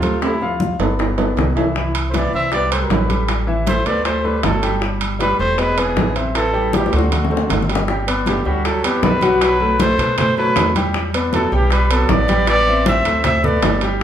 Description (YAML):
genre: Afro-Cuban jazz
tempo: 157 BPM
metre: 4/4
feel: straight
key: G major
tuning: A4 = 443 Hz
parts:
  - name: mellow trumpet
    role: melody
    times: 0.0-13.8 s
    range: E4 to E5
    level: -20 LUFS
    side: equal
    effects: none
  - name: clear tenor saxophone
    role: second line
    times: 0.0-13.8 s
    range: C3 to C4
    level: -26 LUFS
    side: right 3 dB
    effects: none
  - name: warm baby grand piano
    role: accompaniment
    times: 0.0-14.0 s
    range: E3 to G5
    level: -21 LUFS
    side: left 1 dB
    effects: none
  - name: upright bass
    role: bass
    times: 0.0-14.0 s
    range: E1 to B2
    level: -22 LUFS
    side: equal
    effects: none
  - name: congas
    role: percussion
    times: 0.0-14.0 s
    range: none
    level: -26 LUFS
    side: left 1 dB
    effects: none
  - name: timbales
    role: percussion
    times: 0.0-14.0 s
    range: none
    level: -24 LUFS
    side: right 5 dB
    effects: none
  - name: bongos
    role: percussion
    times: 0.2-14.0 s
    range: none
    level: -25 LUFS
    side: left 4 dB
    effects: none
room: wet large studio reverb, RT60 0.9 s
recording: band playing live in one room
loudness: -15 LUFS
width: side -10 dB against mid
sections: 0.0-7.9 A section; 7.9-14.0 B section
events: drum fill 0.2-1.8, 6.7-7.9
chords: 0.2 Dm7; 1.0 G; 1.8 Cmaj7; 3.3 Am7; 4.1 D7; 4.8 Emadd11; 5.6 E7; 6.4 Am7; 7.1 D7; 7.9 Gmaj7; 9.4 B5; 10.9 Em7; 12.5 Am9; 13.2 D5